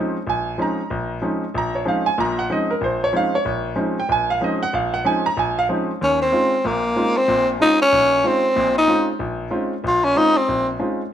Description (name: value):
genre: jazz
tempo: 188 BPM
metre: 4/4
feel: swing 63% on 8ths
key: unclear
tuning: A4 = 444 Hz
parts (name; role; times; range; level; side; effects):
- clear concert grand piano; accompaniment; 0.0-11.0 s; Bb1 to Bb5; -20 LUFS; right 1 dB; none
- growling tenor saxophone; melody; 6.0-10.7 s; Bb3 to F4; -16 LUFS; left 1 dB; none
room: light reverb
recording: none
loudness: -17 LUFS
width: side -10 dB against mid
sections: 0.0-6.0 A section; 6.0-11.1 A section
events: tenor saxophone solo 6.0-11.1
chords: 0.0 Eb13sus4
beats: 0.27 0.59 | 0.91 1.22 1.54 1.86 | 2.18 2.50 2.81 3.13 | 3.45 3.77 4.09 4.41 | 4.73 5.05 5.37 5.68 | 6.00 6.32 6.64 6.96 | 7.28 7.60 7.92 8.24 | 8.56 8.88 9.20 9.52 | 9.84 10.15 10.47 10.79